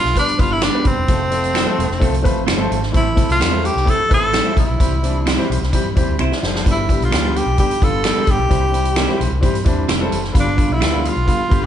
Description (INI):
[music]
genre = uptempo 1960s-style soul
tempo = 130 BPM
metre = 4/4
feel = straight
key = G mixolydian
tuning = A4 = 440 Hz
[part]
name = breathy tenor saxophone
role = melody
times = 0.0-11.7 s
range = C4 to A4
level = -19 LUFS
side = equal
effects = none
[part]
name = vintage muted fingered electric bass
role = bass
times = 0.0-11.7 s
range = E1 to G2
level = -22 LUFS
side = equal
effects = none
[part]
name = swinging big-band drum kit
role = drums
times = 0.1-11.6 s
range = hi-hat, kick drum, snare drum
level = -18 LUFS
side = equal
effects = none
[part]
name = clear grand piano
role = accompaniment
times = 0.2-11.7 s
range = D3 to E5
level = -22 LUFS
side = left 2 dB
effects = none
[part]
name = clean electric guitar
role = stabs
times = 0.6-11.0 s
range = G3 to C5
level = -25 LUFS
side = right 6 dB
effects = none
[part]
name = finger snap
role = percussion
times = 0.6-10.9 s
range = none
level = -30 LUFS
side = left 2 dB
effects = none
[sound]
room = light reverb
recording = band playing live in one room, nothing above 10.9 kHz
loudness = -14 LUFS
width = side -10 dB against mid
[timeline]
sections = 0.0-11.7 A section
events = drum fill 6.2-6.7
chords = 0.0 G; 1.1 F; 2.9 Am; 4.8 C; 6.7 G; 8.5 C; 10.4 G7